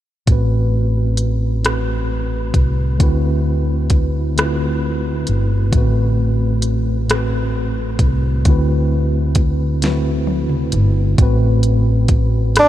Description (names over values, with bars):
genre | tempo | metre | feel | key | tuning
slow six-eight R&B | 44 BPM (dotted quarters) | 6/8 | straight | A dorian | A4 = 440 Hz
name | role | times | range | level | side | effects
mellow tine electric piano | accompaniment | 0.3-12.7 s | A2 to B4 | -20 LUFS | equal | medium stereo tremolo
mellow fretless electric bass | bass | 0.3-12.7 s | G1 to D2 | -17 LUFS | equal | none
smooth R&B drum kit | drums | 0.3-12.7 s | hi-hat, kick drum, rim click, snare drum, toms | -18 LUFS | equal | none
breathy tenor saxophone | melody | 12.6-12.7 s | D4 | -8 LUFS | right 1 dB | none
room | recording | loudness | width
light reverb | none | -14 LUFS | side -13 dB against mid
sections
0.3-11.2 A section; 11.2-12.7 B section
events
drum fill 9.8-11.2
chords
0.3 Am69; 3.0 D13; 5.7 Am69; 8.5 D13; 11.2 Am69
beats
| 0.27 1.63 | 3.00 4.36 | 5.72 7.09 | 8.45 9.81 | 11.18 12.54